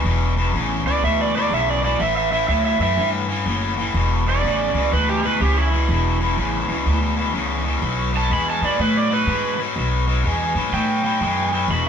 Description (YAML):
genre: electric blues shuffle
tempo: 124 BPM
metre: 4/4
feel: swing 64% on 8ths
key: E mixolydian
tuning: A4 = 440 Hz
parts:
  - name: overdriven electric guitar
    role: riff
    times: 0.0-11.9 s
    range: E2 to G#3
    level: -22 LUFS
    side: left 3 dB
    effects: spring reverb
  - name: upright bass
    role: bass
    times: 0.0-11.9 s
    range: E1 to A2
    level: -22 LUFS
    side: equal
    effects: none
  - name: overdriven slide guitar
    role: second line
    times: 0.9-11.9 s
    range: E4 to B5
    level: -22 LUFS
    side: right 4 dB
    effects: none
room: light reverb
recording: band playing live in one room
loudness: -18 LUFS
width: side -7 dB against mid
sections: 0.0-11.9 A section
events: electric slide guitar solo 0.0-11.9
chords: 0.0 E5; 2.0 A5; 3.9 E5; 7.8 B5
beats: | 0.05 0.53 1.02 1.51 | 1.99 2.48 2.97 3.46 | 3.94 4.43 4.92 5.40 | 5.89 6.37 6.86 7.34 | 7.83 8.31 8.80 9.28 | 9.76 10.25 10.73 11.21 | 11.69